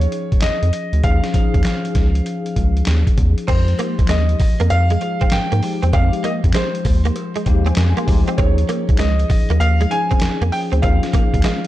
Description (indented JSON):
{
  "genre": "R&B, new jack swing",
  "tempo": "98 BPM",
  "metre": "4/4",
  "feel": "swing 65% on 16ths",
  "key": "F minor",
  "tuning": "A4 = 440 Hz",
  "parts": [
    { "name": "warm grand piano", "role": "melody", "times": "0.0-11.7 s", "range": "C5 to Ab5", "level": "-24 LUFS", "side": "right 1 dB", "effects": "none" },
    { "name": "bell-like tine electric piano", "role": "accompaniment", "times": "0.0-11.7 s", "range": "F3 to C6", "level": "-24 LUFS", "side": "left 4 dB", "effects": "ensemble chorus" },
    { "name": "round analog bass", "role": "bass", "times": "0.0-11.4 s", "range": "C2 to Ab2", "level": "-16 LUFS", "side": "equal", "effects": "none" },
    { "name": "trip hop sampler-style drum kit", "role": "drums", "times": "0.0-11.7 s", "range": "crash cymbal, handclaps, hi-hat, kick drum, snare drum", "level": "-18 LUFS", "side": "equal", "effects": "vintage 12-bit sampler grit" },
    { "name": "direct-recorded clean electric guitar", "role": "riff", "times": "3.5-11.6 s", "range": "Ab3 to C4", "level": "-26 LUFS", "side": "right 4 dB", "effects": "tube saturation, ensemble chorus" },
    { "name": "cowbell", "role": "percussion", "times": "3.5-11.6 s", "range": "none", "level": "-37 LUFS", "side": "left 4 dB", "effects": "none" }
  ],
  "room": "digital ambience",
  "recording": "dark, warm production",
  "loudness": "-15 LUFS",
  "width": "side -15 dB against mid",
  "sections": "0.0-3.5 A section; 3.5-11.7 B section",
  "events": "tine electric piano fill 7.2-8.4",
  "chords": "0.0 Eb9sus4; 3.5 Fm9; 8.4 Eb9sus4"
}